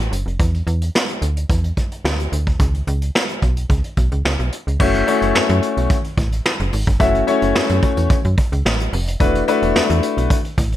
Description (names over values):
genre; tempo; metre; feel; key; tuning
early-eighties boogie funk; 109 BPM; 4/4; straight; F# minor; A4 = 441 Hz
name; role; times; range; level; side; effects
slap-like FM bass; bass; 0.0-10.8 s; E1 to F#2; -19 LUFS; equal; none
vintage brush drum kit; drums; 0.1-10.8 s; crash cymbal, hi-hat, kick drum, snare drum; -19 LUFS; equal; gated reverb
clear concert grand piano; accompaniment; 4.8-10.3 s; A3 to E5; -17 LUFS; left 4 dB; none
room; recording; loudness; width
little or no reverb; none; -16 LUFS; side -12 dB against mid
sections
0.0-4.8 A section; 4.8-10.8 B section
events
none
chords
0.4 Dsus2; 2.6 Bsus2; 4.8 F#m7; 9.2 E9sus4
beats
| 0.40 0.95 1.50 2.05 | 2.60 3.15 3.70 4.25 | 4.80 5.35 5.90 6.45 | 7.00 7.55 8.10 8.65 | 9.20 9.76 10.30